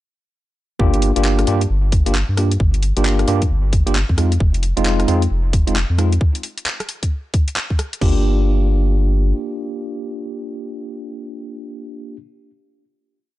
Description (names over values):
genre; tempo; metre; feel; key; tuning
UK garage, two-step garage; 133 BPM; 4/4; swing 62% on 16ths; G phrygian; A4 = 439 Hz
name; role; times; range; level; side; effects
tine electric piano; stabs; 0.8-12.2 s; Ab3 to G4; -22 LUFS; right 1 dB; medium stereo tremolo, analog delay
saturated sub bass; bass; 0.8-9.3 s; F1 to G2; -17 LUFS; equal; tube saturation
electronic kick drum; drums; 0.8-8.1 s; none; -17 LUFS; equal; none
garage drum kit; drums; 0.9-8.1 s; crash cymbal, handclaps, hi-hat, rim click; -25 LUFS; left 1 dB; none
room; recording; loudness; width
little or no reverb; dry, gritty hardware recording, transformer saturation, nothing above 11.0 kHz; -15 LUFS; side -16 dB against mid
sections
0.8-8.0 drop; 8.0-11.6 final chord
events
drop 0.8-8.0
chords
0.8 Gm7; 4.2 Fm7; 8.0 Gm7